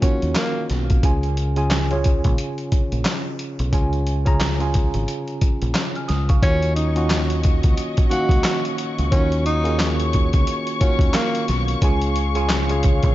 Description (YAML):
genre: hip hop, boom-bap hip-hop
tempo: 89 BPM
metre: 4/4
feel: swing 58% on 16ths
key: Eb minor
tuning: A4 = 440 Hz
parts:
  - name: breathy tenor saxophone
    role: melody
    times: 0.0-0.7, 6.4-11.4 s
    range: Bb3 to Gb4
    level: -26 LUFS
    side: equal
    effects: high-pass filter, low-pass filter, tape echo
  - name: mellow tine electric piano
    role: accompaniment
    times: 0.0-13.1 s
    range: Db3 to F6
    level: -25 LUFS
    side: right 2 dB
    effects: medium stereo tremolo, cassette tape, high-pass filter, low-pass filter
  - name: boom bap sampler-style drum kit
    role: drums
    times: 0.0-13.1 s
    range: handclaps, hi-hat, kick drum, snare drum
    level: -20 LUFS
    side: equal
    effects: none
  - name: deep dub fingered electric bass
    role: bass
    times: 0.2-13.1 s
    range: Ab1 to Eb2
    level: -22 LUFS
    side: equal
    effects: none
  - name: dark studio string section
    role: sustained chords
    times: 6.4-13.1 s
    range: Gb3 to Db6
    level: -28 LUFS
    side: left 4 dB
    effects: high-pass filter, low-pass filter
room: little or no reverb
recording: vinyl crackle, nothing above 7.5 kHz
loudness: -18 LUFS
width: side -15 dB against mid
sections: 0.0-6.4 A section; 6.4-13.1 B section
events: none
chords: 0.0 Ebm7; 1.0 Db; 6.4 Ebm7; 11.8 Db